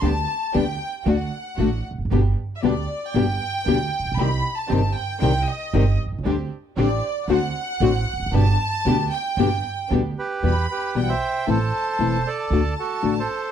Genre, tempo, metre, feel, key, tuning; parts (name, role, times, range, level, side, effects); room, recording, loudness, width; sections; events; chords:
tango; 116 BPM; 4/4; rubato; G major, E minor from 10.4 s; A4 = 441 Hz
clear studio violin section; second line; 0.0-13.5 s; D5 to B5; -27 LUFS; right 1 dB
nylon-string guitar; accompaniment; 0.0-13.2 s; B2 to G4; -22 LUFS; left 7 dB
rich chamber string section; stabs; 0.0-10.1 s; A3 to G4; -30 LUFS; right 8 dB
upright bass; bass; 0.0-13.2 s; E1 to E2; -23 LUFS; right 2 dB
bandoneon; melody; 10.2-13.5 s; F#4 to F#5; -25 LUFS; right 4 dB
studio ambience; dry, close 1970s-style studio recording; -20 LUFS; side -9 dB against mid
0.0-10.4 A section; 10.4-13.5 B section
violin section solo 0.0-10.4
0.0 G/D; 1.1 D; 2.1 G; 4.2 Cm; 6.3 D7sus4; 7.3 D7; 8.3 G; 10.4 Em; 11.5 Am; 12.5 D